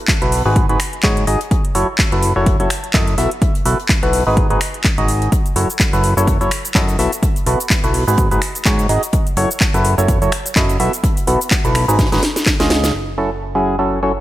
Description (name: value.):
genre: piano house.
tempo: 126 BPM.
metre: 4/4.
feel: swing 57% on 16ths.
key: F# dorian.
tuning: A4 = 444 Hz.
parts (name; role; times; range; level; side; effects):
electronic kick drum; drums; 0.1-12.6 s; none; -17 LUFS; equal; overdrive.
house drum kit; drums; 0.1-12.9 s; finger snaps, handclaps, hi-hat, shaker, snare drum; -20 LUFS; equal; overdrive.
natural country drum kit; drums; 0.1-12.9 s; hi-hat, snare drum; -32 LUFS; left 2 dB; none.
percussive organ stab; riff; 0.2-14.1 s; C#3 to E5; -18 LUFS; equal; chorus, cassette tape, sidechain pumping, digital delay.
fat analog bass; bass; 0.2-14.2 s; F#1 to G#2; -19 LUFS; equal; sidechain pumping.
room: light reverb, digital ambience.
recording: bright 1980s-style digital production.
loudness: -13 LUFS.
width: side -14 dB against mid.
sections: 0.0-12.9 A section; 12.9-14.2 B section.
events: drum fill 12.0-12.9.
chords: 0.0 B7sus4; 0.6 G#m7; 1.5 F#m7; 3.4 B7sus4; 4.4 G#m7; 5.3 F#m7; 7.2 B7sus4; 8.2 G#m7; 9.1 F#m7; 11.0 B7sus4; 12.0 G#m7; 12.5 C#; 12.9 F#m7.